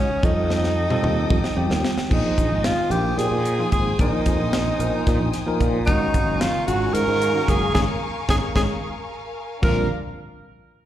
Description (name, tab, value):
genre	electric jazz fusion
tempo	224 BPM (eighths)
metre	7/8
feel	straight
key	unclear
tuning	A4 = 440 Hz
part	warm tenor saxophone	melody	0.0-9.9 s	Db4 to Bb4	-24 LUFS	right 1 dB	plate reverb, slapback echo, tape echo
part	bell-like tine electric piano	accompaniment	0.0-9.9 s	D3 to G5	-27 LUFS	equal	fast stereo tremolo, plate reverb, slapback echo
part	rich symphonic string section	sustained chords	0.0-9.9 s	D4 to Eb6	-31 LUFS	left 3 dB	plate reverb
part	sustaining fretless electric bass	bass	0.1-9.9 s	Gb1 to Bb2	-24 LUFS	equal	none
part	tight funk drum kit	drums	0.2-9.8 s	crash cymbal, hi-hat, kick drum, snare drum, toms	-23 LUFS	equal	none
room	light reverb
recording	live gig heard through the venue's PA, recital hall reverb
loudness	-19 LUFS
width	side -12 dB against mid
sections	0.0-2.1 A section; 2.1-9.6 B section; 9.6-10.9 C section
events	drum fill 0.5-2.1, 8.0-9.6; tine electric piano fill 1.3-2.1; band accent 7.7-9.6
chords	0.2 F9; 2.1 Bb13sus4; 5.9 Ab13sus4; 9.6 Bb